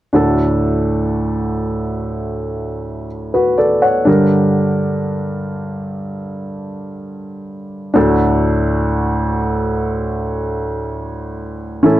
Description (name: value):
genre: pop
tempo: 62 BPM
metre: 4/4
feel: straight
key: D major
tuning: A4 = 440 Hz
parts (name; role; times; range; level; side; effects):
- warm grand piano; accompaniment; 0.1-12.0 s; D2 to F#5; -15 LUFS; equal; none
room: light reverb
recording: dry, close 1970s-style studio recording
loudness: -15 LUFS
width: side -14 dB against mid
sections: 0.1-12.0 A section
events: none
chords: 0.1 D; 4.1 Gm; 8.0 D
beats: | 0.14 1.13 2.12 3.10 | 4.07 5.04 6.01 6.99 | 7.96 8.93 9.90 10.87 | 11.85